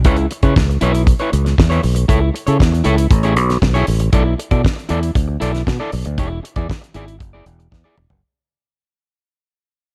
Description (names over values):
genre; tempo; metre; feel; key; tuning
disco; 117 BPM; 4/4; straight; B dorian; A4 = 440 Hz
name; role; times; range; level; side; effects
electric guitar at the edge of break-up; accompaniment; 0.0-8.1 s; E4 to D5; -24 LUFS; equal; none
fingered electric bass; bass; 0.0-8.2 s; E1 to C#3; -19 LUFS; equal; none
damped 70s drum kit; drums; 0.0-8.2 s; hi-hat, kick drum, snare drum, toms; -19 LUFS; equal; none
room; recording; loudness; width
small room ambience; none; -16 LUFS; mono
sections
0.0-4.1 A section; 4.1-8.2 B section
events
fade-out 4.1-8.2; drum fill 7.7-8.2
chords
0.0 C#m7; 2.1 A/C#; 3.1 Amaj7; 4.1 Bm7; 6.2 E7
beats
| 0.05 0.56 1.07 1.58 | 2.09 2.60 3.11 3.62 | 4.13 4.64 5.15 5.66 | 6.18 6.69 7.20 7.71